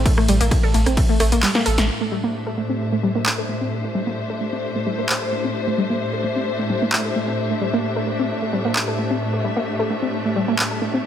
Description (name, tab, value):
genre	driving peak-time techno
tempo	131 BPM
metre	4/4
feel	straight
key	A minor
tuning	A4 = 440 Hz
part	warm sub bass	bass	0.0-1.9 s	A1	-20 LUFS	equal	overdrive, sidechain pumping, low-pass filter
part	swarming drone	drone	0.0-11.1 s	A2 to A3	-27 LUFS	equal	built-in reverb, sidechain pumping
part	electronic kick drum	drums	0.1-1.1 s	none	-18 LUFS	equal	none
part	techno drum kit	drums	0.1-10.7 s	handclaps, hi-hat, ride cymbal, rim click, snare drum	-23 LUFS	equal	overdrive, sidechain pumping on hats, sidechain pumping on cymbals
part	warbly dusty pluck	riff	0.2-11.0 s	G3 to A4	-23 LUFS	equal	chorus, tube saturation, sidechain pumping, dub echo
part	muted studio string section	texture	1.9-11.1 s	A3 to E5	-25 LUFS	left 2 dB	sidechain pumping
room	moderate lush hall reverb, RT60 1.8 s, digital ambience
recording	none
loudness	-18 LUFS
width	side -9 dB against mid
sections	0.0-1.9 A section; 1.9-11.1 B section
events	drop 0.0-1.9; kick drops out 1.4-1.9; drum fill 1.4-1.9; band accent 1.8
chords	0.0 N.C.; 1.9 Am